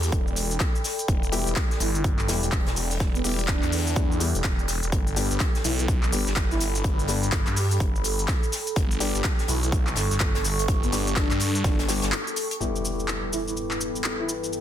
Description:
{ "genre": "bass house", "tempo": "125 BPM", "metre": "4/4", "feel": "swing 61% on 16ths", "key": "E dorian", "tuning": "A4 = 440 Hz", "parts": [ { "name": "breathy flute-like synth lead", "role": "melody", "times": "0.0-14.3 s", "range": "B3 to G4", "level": "-33 LUFS", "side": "right 1 dB", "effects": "analog chorus, tape echo" }, { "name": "phased detuned saw bass", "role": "bass", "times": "0.0-12.1 s", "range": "E1 to G2", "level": "-26 LUFS", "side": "equal", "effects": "phaser, tube saturation, sidechain pumping" }, { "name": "big-room dance drum kit", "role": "drums", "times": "0.0-14.6 s", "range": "handclaps, hi-hat, shaker", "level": "-29 LUFS", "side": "left 1 dB", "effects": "none" }, { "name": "warbly tape-like pad", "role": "texture", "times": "0.0-14.6 s", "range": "E4 to C#6", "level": "-33 LUFS", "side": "right 2 dB", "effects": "chorus, built-in reverb, sidechain pumping" }, { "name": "compact cocktail drum kit", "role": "drums", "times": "0.1-12.6 s", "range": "hi-hat, snare drum", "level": "-37 LUFS", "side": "left 3 dB", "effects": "high-pass filter on hats, high-pass filter on snare, high-pass filter on room" }, { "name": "electronic kick drum", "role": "drums", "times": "0.1-11.8 s", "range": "none", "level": "-24 LUFS", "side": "equal", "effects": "none" }, { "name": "dark concert grand piano", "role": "stabs", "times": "1.3-14.6 s", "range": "G3 to G4", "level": "-32 LUFS", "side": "left 6 dB", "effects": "sidechain pumping, tape echo" }, { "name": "dark analog pad", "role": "sustained chords", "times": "13.2-14.6 s", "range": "G3 to B4", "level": "-36 LUFS", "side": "equal", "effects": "chorus, phaser, sidechain pumping" }, { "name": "impact", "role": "sound effects", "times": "12.6-14.5 s", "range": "none", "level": "-35 LUFS", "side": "equal", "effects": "none" } ], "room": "little or no reverb", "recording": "dense, heavily limited modern master", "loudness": "-22 LUFS", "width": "side -10 dB against mid", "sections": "0.0-12.6 A section; 12.6-14.6 B section", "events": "break 12.1-12.6; impact 12.6-14.5", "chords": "0.0 Em; 4.9 G; 12.6 Em" }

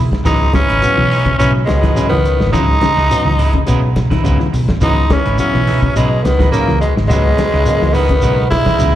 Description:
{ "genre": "afrobeat", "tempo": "105 BPM", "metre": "4/4", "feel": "straight", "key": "C# dorian", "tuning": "A4 = 441 Hz", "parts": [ { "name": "hollow-body short-scale fingered electric bass", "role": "bass", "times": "0.0-8.9 s", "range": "G#1 to C#2", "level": "-15 LUFS", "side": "equal", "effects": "none" }, { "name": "warm soul drum kit", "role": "drums", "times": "0.1-8.9 s", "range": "hi-hat, kick drum, snare drum", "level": "-20 LUFS", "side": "equal", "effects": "none" }, { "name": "barky tine electric piano", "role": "accompaniment", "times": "0.2-9.0 s", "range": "C#3 to C#4", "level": "-23 LUFS", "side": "left 3 dB", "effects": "slapback echo" }, { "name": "electric guitar at the edge of break-up", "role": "stabs", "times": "0.2-8.9 s", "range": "G#3 to B4", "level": "-26 LUFS", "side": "right 7 dB", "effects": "spring reverb, slapback echo" }, { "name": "raspy tenor saxophone", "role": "melody", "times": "0.3-9.0 s", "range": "G#3 to E4", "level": "-16 LUFS", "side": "equal", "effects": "slapback echo" }, { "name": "raspy tenor saxophone", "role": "second line", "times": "0.3-9.0 s", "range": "B2 to G#3", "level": "-24 LUFS", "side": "right 3 dB", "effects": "slapback echo" }, { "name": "clean electric guitar", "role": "arpeggios", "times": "0.3-8.8 s", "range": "C#3 to E3", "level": "-24 LUFS", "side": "left 6 dB", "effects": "slapback echo" }, { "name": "congas", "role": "percussion", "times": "0.3-8.8 s", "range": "none", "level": "-23 LUFS", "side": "equal", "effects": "none" }, { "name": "shekere", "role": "percussion", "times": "0.3-8.9 s", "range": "none", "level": "-23 LUFS", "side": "equal", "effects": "none" } ], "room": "light reverb", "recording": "live gig heard through the venue's PA, club reverb", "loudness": "-11 LUFS", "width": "side -12 dB against mid", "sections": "0.0-9.0 A section", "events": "drum fill 4.2-4.8", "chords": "0.0 C#m9" }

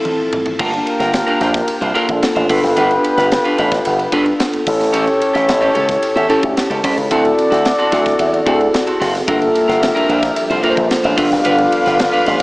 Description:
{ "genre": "polished 1980s jazz-funk pop", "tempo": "110 BPM", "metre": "4/4", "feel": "straight", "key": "G dorian", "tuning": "A4 = 440 Hz", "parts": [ { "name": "mellow tine electric piano", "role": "accompaniment", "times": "0.0-12.4 s", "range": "A3 to A5", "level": "-17 LUFS", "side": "equal", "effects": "medium stereo tremolo, wide subtle chorus" }, { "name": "string machine, violins", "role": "sustained chords", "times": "0.0-0.6, 9.3-12.4 s", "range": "F3 to G4", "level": "-27 LUFS", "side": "equal", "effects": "ensemble chorus" }, { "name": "crisp fusion drum kit", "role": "drums", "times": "0.1-12.4 s", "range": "crash cymbal, hi-hat, kick drum, ride cymbal, snare drum, toms", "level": "-23 LUFS", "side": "equal", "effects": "none" }, { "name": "mellow horn section", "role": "second line", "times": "0.6-12.4 s", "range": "Bb3 to F5", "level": "-18 LUFS", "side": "left 1 dB", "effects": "none" }, { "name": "clean electric guitar", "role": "riff", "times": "0.6-12.4 s", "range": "C4 to C5", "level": "-20 LUFS", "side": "right 1 dB", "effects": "wide subtle chorus" }, { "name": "slap bass with an envelope filter", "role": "bass", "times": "0.6-12.4 s", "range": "F#1 to G2", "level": "-19 LUFS", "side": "equal", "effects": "none" } ], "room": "light reverb, studio reverb", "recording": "small speaker sound", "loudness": "-12 LUFS", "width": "side -22 dB against mid", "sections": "0.6-12.4 A section", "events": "drum fill 0.0-0.6; band accent 0.0-0.6", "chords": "0.0 Fmaj7; 0.6 Gm7; 2.5 G7; 4.7 A7; 7.1 D7; 9.3 Gm7; 11.2 G7" }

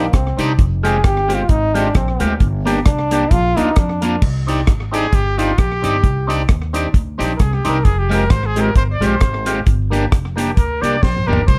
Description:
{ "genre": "ska", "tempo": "132 BPM", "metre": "4/4", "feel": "swing 55% on 8ths", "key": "C minor", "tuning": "A4 = 445 Hz", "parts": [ { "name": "bright trombone", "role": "melody", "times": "0.0-4.2 s", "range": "Bb3 to Ab4", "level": "-22 LUFS", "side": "equal", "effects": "slapback echo" }, { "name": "electric guitar at the edge of break-up", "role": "accompaniment", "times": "0.0-11.4 s", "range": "Ab3 to D5", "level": "-23 LUFS", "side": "equal", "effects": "none" }, { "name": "percussive tonewheel organ", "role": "stabs", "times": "0.0-11.4 s", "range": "Ab3 to G4", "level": "-26 LUFS", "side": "equal", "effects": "slow rotary speaker, slapback echo" }, { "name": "upright bass", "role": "bass", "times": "0.0-11.6 s", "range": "F1 to F2", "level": "-22 LUFS", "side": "equal", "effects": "none" }, { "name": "deep reggae drum kit", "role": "drums", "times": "0.1-11.6 s", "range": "crash cymbal, hi-hat, kick drum, rim click, snare drum, toms", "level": "-18 LUFS", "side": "equal", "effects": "none" }, { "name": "breathy trumpet", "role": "melody", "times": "4.9-11.6 s", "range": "F4 to D5", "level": "-24 LUFS", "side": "equal", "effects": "slapback echo" } ], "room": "light reverb", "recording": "none", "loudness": "-16 LUFS", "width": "mono", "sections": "0.0-4.2 A section; 4.2-11.6 A section", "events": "trombone solo 0.0-4.2; trumpet solo 4.2-11.6; drum fill 11.0-11.5", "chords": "0.0 Cmadd9; 0.6 Fmadd9; 2.4 Gm; 3.3 Bb; 4.2 Cmadd9; 7.9 Fmadd9; 9.7 Gm" }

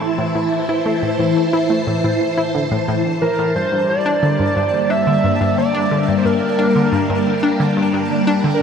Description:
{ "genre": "ambient, sequencer-driven space music", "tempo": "89 BPM", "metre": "4/4", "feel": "straight", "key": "unclear", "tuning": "A4 = 440 Hz", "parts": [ { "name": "phased string machine", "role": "sustained chords", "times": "0.0-8.6 s", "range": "E3 to A5", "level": "-18 LUFS", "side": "equal", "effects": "ensemble chorus, phaser" }, { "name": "analog pluck", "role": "riff", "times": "0.0-8.6 s", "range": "G2 to E4", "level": "-20 LUFS", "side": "left 1 dB", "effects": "chorus, ping-pong delay" }, { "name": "pulsing gated texture", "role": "texture", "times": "0.0-8.6 s", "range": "A5", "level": "-36 LUFS", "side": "right 6 dB", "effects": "chorus, built-in reverb" }, { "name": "pulse-width lead", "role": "melody", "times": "3.2-8.6 s", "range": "Bb4 to E5", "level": "-19 LUFS", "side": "right 1 dB", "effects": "chorus, ping-pong delay" } ], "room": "wet huge ambient reverb, RT60 7.6 s", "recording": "none", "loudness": "-15 LUFS", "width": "side -7 dB against mid", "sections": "0.0-8.6 A section", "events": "none", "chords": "0.0 Am; 3.6 Gm" }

